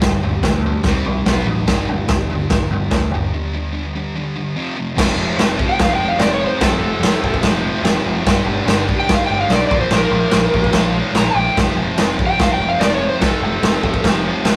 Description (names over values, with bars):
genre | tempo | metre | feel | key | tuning
garage rock duo or trio | 146 BPM | 4/4 | straight | unclear | A4 = 439 Hz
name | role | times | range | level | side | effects
thick fuzz guitar | riff | 0.0-14.6 s | F2 to C4 | -24 LUFS | equal | distortion
growling picked electric bass | bass | 0.0-14.6 s | F1 to D2 | -24 LUFS | equal | overdrive
raw garage drum kit | drums | 0.0-14.6 s | crash cymbal, kick drum, snare drum, toms | -20 LUFS | equal | none
overdriven slide guitar | melody | 5.7-14.0 s | A4 to Bb5 | -21 LUFS | equal | none
room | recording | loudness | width
moderate small room reverb, RT60 0.5 s | rough rehearsal-room recording | -17 LUFS | mono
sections
0.0-5.0 A section; 5.0-14.6 B section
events
break 3.3-5.0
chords
0.0 G5; 0.8 C5; 1.3 B5; 1.7 G5; 4.6 F5; 8.3 G5; 9.7 Bb5; 11.6 F